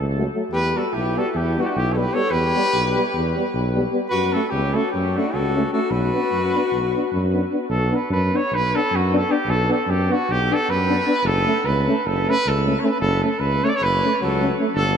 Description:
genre	balkan folk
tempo	303 BPM (eighths)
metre	9/8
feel	straight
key	B minor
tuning	A4 = 439 Hz
part	mellow tuba	bass	0.0-15.0 s	F#1 to F#2	-23 LUFS	equal	none
part	mellow euphonium	accompaniment	0.2-14.6 s	A3 to D4	-27 LUFS	left 5 dB	none
part	warm euphonium	accompaniment	0.2-14.7 s	F#3 to B3	-28 LUFS	right 5 dB	none
part	mellow trumpet	melody	0.5-15.0 s	F#4 to D5	-22 LUFS	right 1 dB	tape echo
part	warm alto saxophone	second line	0.5-7.3, 14.2-15.0 s	D3 to A4	-26 LUFS	left 5 dB	none
room	wet cathedral reverb, RT60 6.2 s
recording	dreamy mix soaked in reverb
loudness	-18 LUFS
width	side -7 dB against mid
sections	0.0-7.7 A section; 7.7-15.0 B section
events	none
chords	0.0 F#m; 0.5 Em; 4.1 F#m; 5.9 Bm; 11.2 F#m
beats	0.12 0.32 | 0.52 0.72 0.92 1.12 1.32 1.52 1.72 1.92 2.12 | 2.31 2.51 2.71 2.91 3.11 3.31 3.51 3.71 3.91 | 4.11 4.31 4.51 4.71 4.91 5.11 5.30 5.50 5.70 | 5.90 6.10 6.30 6.50 6.70 6.90 7.09 7.29 7.49 | 7.69 7.89 8.09 8.28 8.48 8.68 8.88 9.07 9.27 | 9.47 9.66 9.86 10.06 10.25 10.45 10.65 10.84 11.04 | 11.23 11.43 11.63 11.82 12.02 12.21 12.41 12.60 12.80 | 12.99 13.19 13.38 13.58 13.77 13.97 14.16 14.36 14.55 | 14.75 14.94

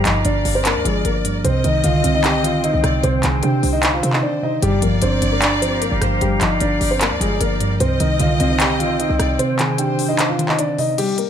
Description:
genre	hip hop, trap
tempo	151 BPM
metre	4/4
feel	half-time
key	C minor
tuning	A4 = 440 Hz
part	dark baby grand piano	melody	0.0-11.3 s	G3 to Ab5	-21 LUFS	left 1 dB	low-pass filter, ping-pong delay
part	muted felt-like synth keys	accompaniment	0.0-11.0 s	G2 to D4	-21 LUFS	right 2 dB	chorus, low-pass filter
part	bright large flute ensemble	sustained chords	0.0-11.0 s	C4 to Bb5	-28 LUFS	equal	none
part	short 808-style bass	bass	0.0-9.4 s	G1 to C3	-22 LUFS	equal	none
part	warm studio violin section	second line	0.1-10.9 s	C5 to Eb5	-26 LUFS	left 3 dB	ping-pong delay
part	trap drum kit	drums	0.1-11.3 s	crash cymbal, handclaps, hi-hat, rim click	-22 LUFS	equal	none
room	light reverb, studio reverb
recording	none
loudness	-15 LUFS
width	side -9 dB against mid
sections	0.0-11.0 A section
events	break 4.2-4.6; kick muted 9.4-11.0, 11.0-11.3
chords	0.0 Gm7; 1.4 Cmadd9; 4.6 Gm7; 7.8 Cmadd9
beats	0.25 0.65 1.05 | 1.45 1.84 2.24 2.64 | 3.04 3.43 3.83 4.23 | 4.62 5.02 5.42 5.82 | 6.21 6.61 7.01 7.41 | 7.80 8.20 8.60 9.00 | 9.39 9.79 10.19 10.59 | 10.98

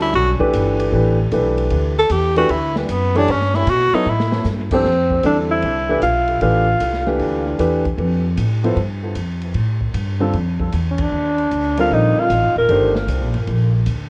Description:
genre	modal jazz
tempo	153 BPM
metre	4/4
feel	swing 67% on 8ths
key	unclear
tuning	A4 = 440 Hz
part	bright tenor saxophone	second line	0.0-4.5 s	G3 to A4	-20 LUFS	equal	none
part	warm grand piano	accompaniment	0.0-12.9 s	F2 to C#5	-23 LUFS	equal	tape echo
part	upright bass	bass	0.0-14.1 s	Eb1 to B2	-22 LUFS	equal	none
part	swinging big-band drum kit	drums	0.0-14.0 s	crash cymbal, hi-hat, kick drum, ride cymbal, snare drum	-32 LUFS	equal	tape echo
part	breathy alto saxophone	melody	4.7-7.2, 10.9-12.9 s	C4 to Bb4	-21 LUFS	equal	tape echo
room	light reverb, studio ambience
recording	echo-heavy mix, cassette tape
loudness	-18 LUFS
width	mono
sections	0.0-4.8 A section; 4.8-14.1 B section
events	tenor saxophone solo 0.0-4.8; drum fill 4.1-4.5; band accent 10.9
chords	0.0 Gmaj9; 4.8 Fmaj9; 11.1 Ebmaj9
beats	| 0.15 0.54 0.93 1.32 | 1.72 2.11 2.50 2.89 | 3.28 3.67 4.06 4.46 | 4.85 5.24 5.63 6.02 | 6.42 6.81 7.20 7.59 | 7.98 8.38 8.77 9.16 | 9.55 9.95 10.34 10.73 | 11.12 11.51 11.91 12.30 | 12.69 13.08 13.47 13.87

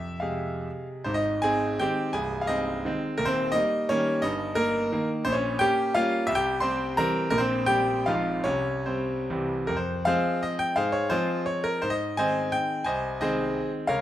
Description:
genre	classical, romantic triple-time dance for piano with dotted rhythms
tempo	127-190 BPM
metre	3/4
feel	rubato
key	Ab major, F minor from 5.3 s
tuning	A4 = 439 Hz
part	bright concert grand piano	solo	0.0-14.0 s	C1 to C6	-24 LUFS	equal	none
room	light reverb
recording	close, detailed microphones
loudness	-24 LUFS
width	side -12 dB against mid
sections	0.0-1.1 A section; 1.1-9.7 B section; 9.7-14.0 C section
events	none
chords	0.0 Fm; 1.1 Ab; 2.2 Ab/C; 3.2 Eb; 4.2 Eb/G; 5.3 Gdim/Bb; 6.3 C; 7.3 C5/Bb; 8.1 Fm/Ab; 8.5 C5; 9.3 C; 9.7 Fm; 10.8 Fm/Ab; 11.8 Ab; 12.9 Ab/C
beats	0.20 0.65 | 1.06 1.44 1.81 | 2.15 2.51 2.87 | 3.20 3.55 3.91 | 4.24 4.57 4.92 | 5.26 5.60 5.96 | 6.29 6.62 6.97 | 7.31 7.67 8.07 | 8.46 8.87 9.29 | 9.69 10.07 10.43 | 10.78 11.13 11.49 | 11.84 12.20 12.54 | 12.87 13.22 13.56 | 13.89

